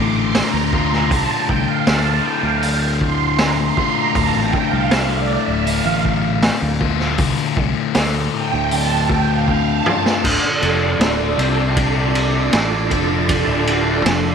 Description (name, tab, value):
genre	psychedelic rock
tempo	79 BPM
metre	4/4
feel	straight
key	D minor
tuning	A4 = 440 Hz
part	phased string machine	sustained chords	0.0-14.3 s	D4 to D6	-21 LUFS	right 11 dB	ensemble chorus, phaser
part	thick fuzz guitar	riff	0.0-14.3 s	D2 to F4	-20 LUFS	left 12 dB	distortion, phaser
part	fingered electric bass	bass	0.0-14.3 s	D1 to D2	-21 LUFS	right 1 dB	none
part	raw garage drum kit	drums	0.3-14.2 s	crash cymbal, hi-hat, kick drum, ride cymbal, snare drum, toms	-20 LUFS	right 1 dB	none
room	moderate echo chamber reverb, RT60 2.0 s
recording	1960s-style stereo with parts hard left and right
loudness	-15 LUFS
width	side -6 dB against mid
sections	0.0-10.2 A section; 10.2-14.3 B section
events	string machine solo 0.0-10.2; drum fill 9.5-10.2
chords	0.0 Dm